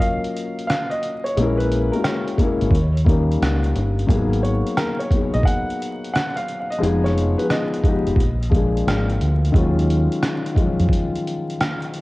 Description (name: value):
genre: lo-fi hip hop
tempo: 88 BPM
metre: 4/4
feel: swing 66% on 16ths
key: Eb minor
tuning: A4 = 440 Hz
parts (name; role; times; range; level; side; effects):
- warm upright piano; melody; 0.0-8.5 s; Bb4 to Gb5; -26 LUFS; equal; low-pass filter, cassette tape
- felt-muted upright piano; accompaniment; 0.0-12.0 s; Eb3 to Bb4; -22 LUFS; left 2 dB; cassette tape, low-pass filter
- trip hop sampler-style drum kit; drums; 0.0-12.0 s; hi-hat, kick drum, rim click; -21 LUFS; equal; cassette tape
- deep dub fingered electric bass; bass; 1.4-10.9 s; F1 to F2; -20 LUFS; equal; none
room: light reverb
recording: home recording on cassette, vinyl crackle, nothing above 10.7 kHz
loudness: -18 LUFS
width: side -20 dB against mid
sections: 0.0-12.0 A section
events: none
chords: 0.0 Gbmaj7; 1.4 Bbm7b5; 2.7 Eb7; 4.1 Abm9; 6.8 Fm7b5; 8.2 Bb7; 9.5 Ebm11